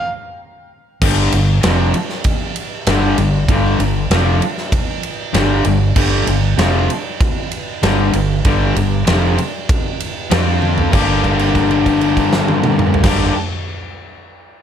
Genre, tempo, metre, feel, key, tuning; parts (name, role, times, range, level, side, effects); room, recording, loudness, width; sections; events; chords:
blues rock power trio and southern rock; 97 BPM; 4/4; straight; G minor; A4 = 442 Hz
fuzz guitar; riff; 1.0-13.3 s; F2 to G4; -16 LUFS; left 1 dB; distortion
vintage muted fingered electric bass; bass; 1.0-13.3 s; F1 to F2; -18 LUFS; equal
huge arena drum kit; drums; 1.0-13.2 s; crash cymbal, kick drum, ride cymbal, snare drum, toms; -18 LUFS; equal
light reverb; -13 LUFS; side -9 dB against mid
0.0-1.0 A section; 1.0-10.9 B section; 10.9-13.4 C section
stop 0.0-1.0; drum fill 10.6-10.9; held note 10.9-13.0
0.0 N.C.; 1.0 G5; 10.3 F5; 10.9 Gm